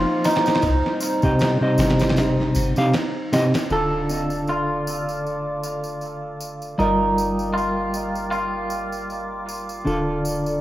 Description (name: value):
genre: trip hop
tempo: 78 BPM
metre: 4/4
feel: swing 56% on 16ths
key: D phrygian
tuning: A4 = 439 Hz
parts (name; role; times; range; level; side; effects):
- clean electric guitar; melody; 0.0-9.4 s; Eb4 to A4; -26 LUFS; right 1 dB; spring reverb, tape echo
- mellow electric guitar; accompaniment; 0.0-10.6 s; C3 to F5; -23 LUFS; equal; harmonic tremolo, tape echo
- dark analog pad; sustained chords; 0.0-10.6 s; G3 to D6; -27 LUFS; equal; chorus
- soft 808-style bass; bass; 0.0-10.6 s; D1 to C2; -30 LUFS; equal; none
- trip hop sampler-style drum kit; drums; 0.2-3.7 s; kick drum, ride cymbal, snare drum; -25 LUFS; equal; none
- tambourine; percussion; 0.2-10.6 s; none; -37 LUFS; left 1 dB; none
room: light reverb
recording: rough home demo mix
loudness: -19 LUFS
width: side -14 dB against mid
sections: 0.0-3.7 A section; 3.7-10.6 B section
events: none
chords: 0.0 F7sus4; 0.6 Cm; 3.7 Dm; 6.8 Gm7; 9.9 Dm